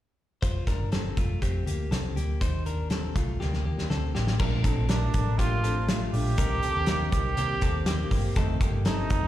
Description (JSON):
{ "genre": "jangly indie pop", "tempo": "121 BPM", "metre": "4/4", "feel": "straight", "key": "F mixolydian", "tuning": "A4 = 440 Hz", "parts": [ { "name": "direct-recorded clean electric guitar", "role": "arpeggios", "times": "0.4-9.3 s", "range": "A3 to C5", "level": "-35 LUFS", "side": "left 7 dB", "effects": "warbly pitch drift, plate reverb, slapback echo, analog delay" }, { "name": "vintage muted picked electric bass", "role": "bass", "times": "0.4-9.3 s", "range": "F1 to F2", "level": "-28 LUFS", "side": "equal", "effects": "none" }, { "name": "loose indie drum kit", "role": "drums", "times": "0.4-9.2 s", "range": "crash cymbal, hi-hat, kick drum, snare drum", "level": "-28 LUFS", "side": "equal", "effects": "none" }, { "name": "picked steel-string acoustic guitar", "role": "accompaniment", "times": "4.4-9.3 s", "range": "F2 to G4", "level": "-35 LUFS", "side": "right 3 dB", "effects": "plate reverb, slapback echo" }, { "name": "warm trumpet", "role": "melody", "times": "4.9-9.3 s", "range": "D4 to G4", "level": "-31 LUFS", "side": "right 4 dB", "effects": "plate reverb, slapback echo, analog delay" } ], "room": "light reverb", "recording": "live gig heard through the venue's PA, recital hall reverb", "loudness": "-24 LUFS", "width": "side -13 dB against mid", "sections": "0.4-4.4 A section; 4.4-9.3 B section", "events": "drum fill 3.4-4.4", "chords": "0.4 Fadd9; 2.4 Eb6; 4.4 Bbmaj7; 6.4 Cm7; 8.4 F7", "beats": "| 0.42 0.92 1.42 1.92 | 2.41 2.91 3.41 3.90 | 4.40 4.89 5.39 5.89 | 6.38 6.88 7.38 7.87 | 8.37 8.86" }